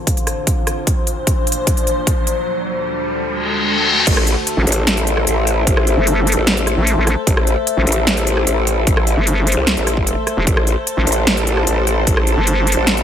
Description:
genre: heavy wobble dubstep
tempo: 150 BPM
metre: 4/4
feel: half-time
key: A phrygian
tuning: A4 = 442 Hz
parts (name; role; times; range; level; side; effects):
- evolving wavetable pad; sustained chords; 0.0-13.0 s; A3 to A5; -21 LUFS; left 3 dB; chorus, built-in reverb, sidechain pumping
- riser and reverse cymbal; sound effects; 2.0-4.1 s; none; -21 LUFS; left 2 dB; none
- big-room dance drum kit; drums; 0.1-13.0 s; crash cymbal, hi-hat, rim click, snare drum; -19 LUFS; equal; overdrive, high-pass filter on hats, small room reverb, high-pass filter on snare, high-pass filter on cymbals
- electronic kick drum; drums; 0.1-12.2 s; none; -18 LUFS; equal; overdrive, small room reverb
- growl bass; bass; 4.1-13.0 s; A1 to C2; -17 LUFS; equal; chorus, overdrive
- vowel-sweep wobble bass; bass; 4.6-12.8 s; E1 to A1; -15 LUFS; equal; chorus, overdrive
room: light reverb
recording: none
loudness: -14 LUFS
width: side -9 dB against mid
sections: 0.0-4.1 A section; 4.1-13.0 B section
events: build-up 0.0-4.1; drum fill 0.9-2.5; riser 2.0-4.1; reverse cymbal 3.3-4.1; drop 4.1-13.0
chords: 0.0 Dm7; 0.9 Bbadd9; 2.5 D; 4.1 Am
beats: 0.07 0.47 | 0.87 1.27 1.67 2.07 | 2.47 2.87 3.27 3.67 | 4.07 4.47 4.87 5.27 | 5.67 6.07 6.47 6.87 | 7.27 7.67 8.07 8.47 | 8.87 9.27 9.67 10.07 | 10.47 10.87 11.27 11.67 | 12.07 12.47 12.87

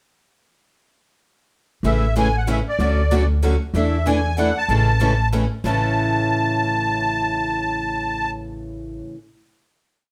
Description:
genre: acoustic string swing (jazz manouche)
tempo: 190 BPM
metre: 3/4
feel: swing 61% on 8ths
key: A major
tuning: A4 = 440 Hz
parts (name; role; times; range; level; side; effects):
- picked acoustic archtop guitar; accompaniment; 1.8-9.2 s; A2 to A4; -28 LUFS; equal; none
- picked steel-string acoustic guitar; accompaniment; 1.8-9.2 s; A2 to A4; -30 LUFS; equal; none
- upright bass; bass; 1.8-9.0 s; A1 to E2; -24 LUFS; equal; none
- musette accordion; melody; 1.9-8.3 s; D5 to A5; -24 LUFS; equal; none
room: moderate studio reverb, RT60 0.7 s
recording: band playing live in one room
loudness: -20 LUFS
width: mono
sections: 1.8-5.6 A section; 5.6-7.5 final chord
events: none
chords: 1.8 Amaj7; 2.8 Dmaj7; 3.7 E7sus4; 4.7 Amaj7; 5.6 A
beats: | 1.84 2.16 2.48 | 2.79 3.11 3.43 | 3.74 4.06 4.38 | 4.70 5.01 5.33 | 5.64 5.96 6.28 | 6.59 6.91 7.22

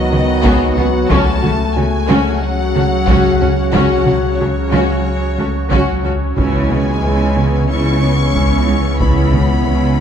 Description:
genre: cinematic, hybrid orchestral and electronic film score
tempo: 91 BPM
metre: 4/4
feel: straight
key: unclear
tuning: A4 = 440 Hz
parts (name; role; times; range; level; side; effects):
- warm studio violin section; melody; 0.0-10.0 s; C#5 to C#6; -24 LUFS; left 3 dB; none
- evolving wavetable pad; sustained chords; 0.0-10.0 s; F#3 to F#5; -23 LUFS; left 1 dB; chorus, built-in reverb
- mellow French horn section; sustained chords; 0.0-10.0 s; C#3 to C#4; -21 LUFS; left 4 dB; none
- mellow trombone section; sustained chords; 0.0-10.0 s; C#3 to B3; -23 LUFS; right 2 dB; none
- punchy sub bass; bass; 0.0-10.0 s; C#2; -20 LUFS; equal; none
- warm symphonic violin section; second line; 0.1-10.0 s; C#4 to D#5; -26 LUFS; left 4 dB; none
- warm symphonic viola section; accompaniment; 0.1-10.0 s; B3 to F#4; -22 LUFS; equal; none
- soft round pluck; arpeggios; 0.1-9.9 s; C#3 to F#4; -26 LUFS; right 4 dB; none
- rich symphonic cello section; bass; 0.1-10.0 s; C#3; -22 LUFS; right 2 dB; none
- rich symphonic double bass section; bass; 0.1-10.0 s; C#2; -21 LUFS; right 2 dB; none
- taiko ensemble; drums; 0.4-9.6 s; none; -20 LUFS; equal; none
room: moderate scoring stage reverb, RT60 1.9 s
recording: dark, warm production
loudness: -12 LUFS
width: side -8 dB against mid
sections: 0.0-10.0 A section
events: none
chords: 0.0 B6/C#; 1.1 F#m/C#; 6.4 C#m7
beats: 0.44 | 1.10 1.75 2.42 3.07 | 3.73 4.39 5.05 5.71 | 6.37 7.03 7.69 8.35 | 9.01 9.67

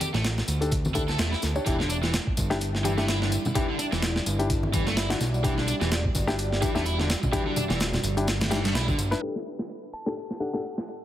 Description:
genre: breakbeat, breaks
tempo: 127 BPM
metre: 4/4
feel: swing 56% on 16ths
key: unclear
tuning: A4 = 440 Hz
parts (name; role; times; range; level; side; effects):
- crunchy overdriven guitar; riff; 0.0-9.0 s; D3 to A4; -32 LUFS; equal; digital delay
- breakbeat sampler-style drum kit; drums; 0.0-11.0 s; hi-hat, kick drum, snare drum; -29 LUFS; equal; low-pass filter on hats, small room ambience, low-pass filter on kick, low-pass filter on snare
- tambourine; drums; 0.0-11.0 s; none; -39 LUFS; left 2 dB; small room ambience
- congas; percussion; 0.0-8.5 s; none; -34 LUFS; equal; none
- fat analog bass; bass; 0.1-9.1 s; E1 to D2; -28 LUFS; equal; none
- dark baby grand piano; stabs; 0.6-10.6 s; D4 to C#5; -32 LUFS; left 3 dB; vintage 12-bit sampler grit, digital delay
- dark analog pad; sustained chords; 2.4-11.0 s; G3 to D5; -35 LUFS; equal; chorus, vintage 12-bit sampler grit, sidechain pumping
- glassy synth bell; melody; 9.9-10.6 s; F#5 to A5; -41 LUFS; right 1 dB; chorus, telephone sound, digital delay
room: light reverb, digital ambience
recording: heavily compressed radio sound, low-pass filter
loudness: -24 LUFS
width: side -12 dB against mid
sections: 0.0-9.2 A section; 9.2-11.0 B section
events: filter sweep 9.2-11.0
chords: 0.0 A7sus4; 1.7 Em7; 9.2 A7sus4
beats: 0.25 0.72 1.19 | 1.66 2.14 2.61 3.08 | 3.55 4.03 4.50 4.97 | 5.44 5.92 6.39 6.86 | 7.33 7.81 8.28 8.75 | 9.22 9.70 10.17 10.64

